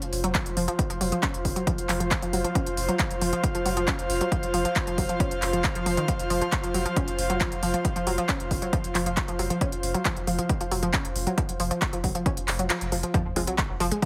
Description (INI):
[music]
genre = driving peak-time techno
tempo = 136 BPM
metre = 4/4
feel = straight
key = unclear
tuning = A4 = 441 Hz
[part]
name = warm sub bass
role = bass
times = 0.0-13.9 s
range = F1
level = -35 LUFS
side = equal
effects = tube saturation, sidechain pumping, low-pass filter
[part]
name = techno drum kit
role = drums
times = 0.0-14.1 s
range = handclaps, hi-hat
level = -32 LUFS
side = equal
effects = none
[part]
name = airy breathy pad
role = texture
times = 0.0-13.1 s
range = F4 to F5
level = -33 LUFS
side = equal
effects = chorus, sidechain pumping
[part]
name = analog pluck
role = riff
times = 0.2-14.1 s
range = Eb3 to F4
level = -32 LUFS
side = equal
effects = chorus, overdrive, sidechain pumping, digital delay
[part]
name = electronic kick drum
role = drums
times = 0.3-14.1 s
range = none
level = -31 LUFS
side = equal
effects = none
[part]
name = sub drop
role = sound effects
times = 13.3-14.1 s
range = none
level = -40 LUFS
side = equal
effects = none
[part]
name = filtered dub chord stab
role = stabs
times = 13.4 s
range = F3 to F4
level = -35 LUFS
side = equal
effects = chorus, sidechain pumping, tape echo
[sound]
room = light reverb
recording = heavily compressed radio sound, multiband compression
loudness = -26 LUFS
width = mono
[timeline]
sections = 0.0-13.1 A section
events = kick drops out 12.7-13.1; band accent 12.7; impact 13.1-14.1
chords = 0.0 F5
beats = 0.35 | 0.79 1.23 1.67 2.11 | 2.55 2.99 3.44 3.88 | 4.32 4.76 5.20 5.64 | 6.08 6.52 6.96 7.41 | 7.85 8.29 8.73 9.17 | 9.61 10.05 10.49 10.94 | 11.38 11.82 12.26 12.70 | 13.14 13.58 14.02